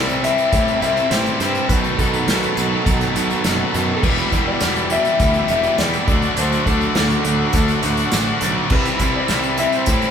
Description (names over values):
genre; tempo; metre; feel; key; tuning
indie rock; 103 BPM; 4/4; straight; E minor; A4 = 441 Hz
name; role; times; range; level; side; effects
electric guitar through a small old amp; melody; 0.0-10.1 s; A4 to E5; -23 LUFS; left 3 dB; none
combo organ; sustained chords; 0.0-10.1 s; C4 to E6; -30 LUFS; equal; none
distorted electric guitar; riff; 0.0-10.1 s; E2 to G4; -21 LUFS; left 5 dB; distortion
thick fuzz guitar; riff; 0.0-10.1 s; B2 to E4; -23 LUFS; right 6 dB; distortion
fuzz fingered electric bass; bass; 0.0-10.1 s; E1 to A2; -23 LUFS; equal; overdrive
unplugged drum kit; drums; 0.1-10.1 s; crash cymbal, hi-hat, kick drum, snare drum; -22 LUFS; right 1 dB; none
room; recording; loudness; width
moderate large studio reverb, RT60 1.2 s; band playing live in one room; -15 LUFS; side -8 dB against mid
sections
0.0-10.1 A section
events
none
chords
0.0 Cmaj7; 1.7 B7sus4; 4.0 Em7; 6.1 D7; 8.7 Cmaj7